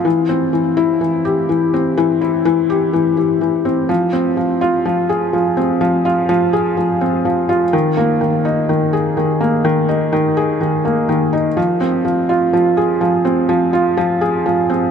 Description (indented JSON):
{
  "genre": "electronica",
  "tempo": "125 BPM",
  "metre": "4/4",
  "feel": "straight",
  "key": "unclear",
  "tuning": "A4 = 440 Hz",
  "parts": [
    { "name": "felt-muted upright piano", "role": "solo", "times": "0.0-14.9 s", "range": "Eb3 to Ab4", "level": "-14 LUFS", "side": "left 1 dB", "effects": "none" }
  ],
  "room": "moderate huge ambient reverb, RT60 7.5 s",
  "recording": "none",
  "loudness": "-14 LUFS",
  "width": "side -7 dB against mid",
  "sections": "0.0-14.9 A section",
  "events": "none",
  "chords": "none",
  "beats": "| 0.05 0.53 1.01 1.49 | 1.97 2.45 2.93 3.41 | 3.89 4.37 4.85 5.33 | 5.81 6.29 6.77 7.25 | 7.73 8.21 8.69 9.17 | 9.65 10.13 10.61 11.09 | 11.57 12.05 12.53 13.01 | 13.49 13.97 14.45"
}